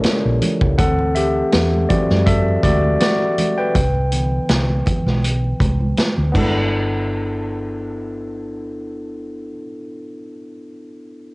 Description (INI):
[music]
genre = lush 1970s-style soul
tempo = 81 BPM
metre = 4/4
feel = swing 54% on 16ths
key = G major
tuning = A4 = 444 Hz
[part]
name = barky tine electric piano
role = accompaniment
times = 0.0-11.3 s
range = C#3 to G5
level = -21 LUFS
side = left 1 dB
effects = overdrive, cassette tape
[part]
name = vintage drum kit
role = drums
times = 0.0-6.5 s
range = crash cymbal, hi-hat, kick drum, snare drum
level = -20 LUFS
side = equal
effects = cassette tape
[part]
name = hollow-body short-scale fingered electric bass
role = bass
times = 0.1-9.5 s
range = G1 to F#2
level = -20 LUFS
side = equal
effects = transformer saturation
[part]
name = congas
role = percussion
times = 0.1-7.0 s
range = none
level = -25 LUFS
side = right 2 dB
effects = none
[sound]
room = light reverb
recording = home recording on cassette, nothing above 10.7 kHz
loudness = -15 LUFS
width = side -24 dB against mid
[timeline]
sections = 0.0-6.7 A section; 6.7-9.7 B section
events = tine electric piano solo 0.0-6.7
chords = 0.0 A7b9; 0.8 D9; 3.8 Cmaj7; 6.3 G69